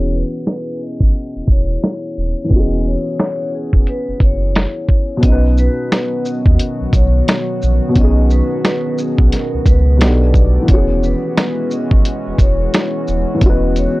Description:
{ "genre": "lo-fi hip hop", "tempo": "88 BPM", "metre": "4/4", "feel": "swing 60% on 16ths", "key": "B major", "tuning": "A4 = 440 Hz", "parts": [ { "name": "vibraphone with medium mallets", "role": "melody", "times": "0.0-14.0 s", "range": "G#4 to D#5", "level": "-24 LUFS", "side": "left 2 dB", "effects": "none" }, { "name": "dark upright piano", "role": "accompaniment", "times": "0.0-14.0 s", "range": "B2 to B4", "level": "-20 LUFS", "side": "left 1 dB", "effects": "cassette tape" }, { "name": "sub bass with octave", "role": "bass", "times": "0.0-13.9 s", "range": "D#1 to D#2", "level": "-15 LUFS", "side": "equal", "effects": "none" }, { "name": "lo-fi sampler-style drum kit", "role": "drums", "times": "0.5-13.9 s", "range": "hi-hat, kick drum, shaker, snare drum", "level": "-13 LUFS", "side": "equal", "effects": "none" }, { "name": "warbly tape-like pad", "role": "sustained chords", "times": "5.8-14.0 s", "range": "D#3 to D5", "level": "-24 LUFS", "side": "equal", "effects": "chorus, built-in reverb" } ], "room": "little or no reverb", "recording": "dry, gritty hardware recording, low-pass filter", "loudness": "-12 LUFS", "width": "side -20 dB against mid", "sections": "0.0-5.2 A section; 5.2-14.0 B section", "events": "filter sweep 0.0-5.2", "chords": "0.0 E69; 5.2 B; 10.0 B7alt; 10.7 E69" }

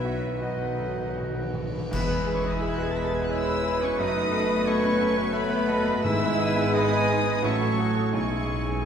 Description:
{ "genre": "classical, romantic movement for piano and orchestra", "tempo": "87 BPM", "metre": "3/4", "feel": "uneven beats, rubato", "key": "E major", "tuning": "A4 = 440 Hz", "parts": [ { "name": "clear concert grand piano", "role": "melody", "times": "0.0-8.9 s", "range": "B1 to E5", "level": "-28 LUFS", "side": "equal", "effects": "none" }, { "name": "warm chamber violin section", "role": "melody", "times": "0.0-8.8 s", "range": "F#4 to B6", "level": "-35 LUFS", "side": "left 2 dB", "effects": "none" }, { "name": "bright clarinet", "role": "second line", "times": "0.0-8.9 s", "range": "B4 to G#5", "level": "-36 LUFS", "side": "equal", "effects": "none" }, { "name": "clear oboe", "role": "second line", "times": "0.0-8.6 s", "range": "D#4 to B5", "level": "-36 LUFS", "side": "right 2 dB", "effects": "none" }, { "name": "large flute ensemble", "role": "second line", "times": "0.0-8.8 s", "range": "B5 to E6", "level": "-36 LUFS", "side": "left 3 dB", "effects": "none" }, { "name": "warm chamber violin section", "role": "second line", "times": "0.0-8.8 s", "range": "E4 to E5", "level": "-36 LUFS", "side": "equal", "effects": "none" }, { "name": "dark chamber viola section", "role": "accompaniment", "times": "0.0-8.8 s", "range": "F#3 to E4", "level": "-32 LUFS", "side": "equal", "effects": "none" }, { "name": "mellow French horn section", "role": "sustained chords", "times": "0.0-8.8 s", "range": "F#3 to G#4", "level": "-35 LUFS", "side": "left 4 dB", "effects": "none" }, { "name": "warm trombone section", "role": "sustained chords", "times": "0.0-8.9 s", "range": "G#2 to A3", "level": "-36 LUFS", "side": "right 2 dB", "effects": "none" }, { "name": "mellow trumpet", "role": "stabs", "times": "0.0-8.9 s", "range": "G#4 to F#5", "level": "-36 LUFS", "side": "right 2 dB", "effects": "none" }, { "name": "dark chamber cello section", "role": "bass", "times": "0.0-8.8 s", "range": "B2 to B4", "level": "-36 LUFS", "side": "right 1 dB", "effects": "none" }, { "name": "warm chamber double bass section", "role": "bass", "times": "0.0-8.9 s", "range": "E1 to B1", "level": "-34 LUFS", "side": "right 4 dB", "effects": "none" }, { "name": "timpani", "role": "percussion", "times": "0.0-1.8, 6.0-7.0 s", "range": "G#2 to B2", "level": "-35 LUFS", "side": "left 1 dB", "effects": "none" }, { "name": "clear bassoon", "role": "accompaniment", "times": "1.9-8.6 s", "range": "F#3 to A3", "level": "-36 LUFS", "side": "right 1 dB", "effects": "none" }, { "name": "clash cymbals and concert bass drum", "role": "percussion", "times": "1.9-3.3 s", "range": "none", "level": "-37 LUFS", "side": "equal", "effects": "none" } ], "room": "wet scoring stage reverb, RT60 1.7 s", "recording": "heard from further back in the room", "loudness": "-23 LUFS", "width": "side -7 dB against mid", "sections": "0.0-1.9 A section; 1.9-8.9 B section", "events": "timpani fill 0.0-1.9; band accent 1.9-2.6", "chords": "0.0 B; 1.9 E; 4.0 B7/F#; 6.0 E/G#; 7.4 F#m/A; 8.1 E/B" }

